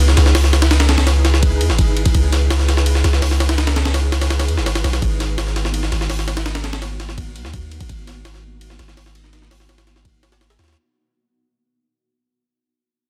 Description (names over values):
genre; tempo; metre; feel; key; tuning
drum and bass, jungle; 167 BPM; 4/4; straight; unclear; A4 = 440 Hz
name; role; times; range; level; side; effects
long sustained 808-style bass; bass; 0.0-10.8 s; G#1 to E2; -19 LUFS; equal; none
jungle sampler-style drum kit; drums; 0.1-10.8 s; hi-hat, kick drum, ride cymbal, snare drum; -22 LUFS; equal; overdrive
room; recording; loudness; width
little or no reverb; dense, heavily limited modern master; -17 LUFS; mono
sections
0.0-10.8 A section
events
fade-out 0.0-10.8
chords
none